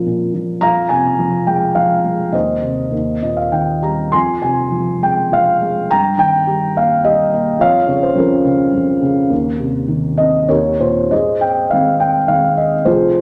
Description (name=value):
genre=classical, lyrical solo piano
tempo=94-108 BPM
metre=3/4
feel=rubato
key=unclear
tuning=A4 = 440 Hz
part: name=felt-muted upright piano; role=solo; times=0.0-13.2 s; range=F1 to C6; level=-15 LUFS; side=equal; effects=none
room=moderate scoring stage reverb, RT60 1.8 s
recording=none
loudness=-15 LUFS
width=mono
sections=0.0-11.1 A section; 11.1-13.2 B section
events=felt piano fill 2.9-4.1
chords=0.0 Bbm; 0.6 Fm; 2.3 Cm/Eb; 2.9 Eb; 4.1 Fm; 5.9 Eb/G; 7.6 Bbm/F; 9.3 Bbmadd11/Eb; 10.5 Eb; 11.1 Ab